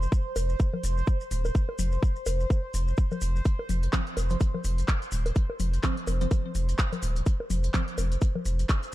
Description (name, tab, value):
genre	minimal techno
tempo	126 BPM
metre	4/4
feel	swing 58% on 16ths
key	unclear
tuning	A4 = 437 Hz
part	round analog bass	bass	0.0-8.6 s	Eb1 to F1	-26 LUFS	equal	sidechain pumping
part	maracas	percussion	0.0-8.9 s	none	-43 LUFS	left 2 dB	none
part	bubbling stepped-filter texture	texture	0.0-8.9 s	C5	-38 LUFS	right 1 dB	chorus, built-in reverb, sidechain pumping
part	electronic kick drum	drums	0.1-8.8 s	none	-24 LUFS	equal	none
part	techno drum kit	drums	0.4-8.9 s	handclaps, hi-hat	-36 LUFS	equal	none
part	bongos and congas	percussion	0.4-8.4 s	none	-37 LUFS	left 3 dB	ping-pong delay
part	wavetable chord stab	stabs	3.9-7.8 s	F3 to C5	-36 LUFS	right 2 dB	ping-pong delay
room	little or no reverb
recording	dark, warm production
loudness	-25 LUFS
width	side -16 dB against mid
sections	0.0-8.9 A section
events	none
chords	0.0 F5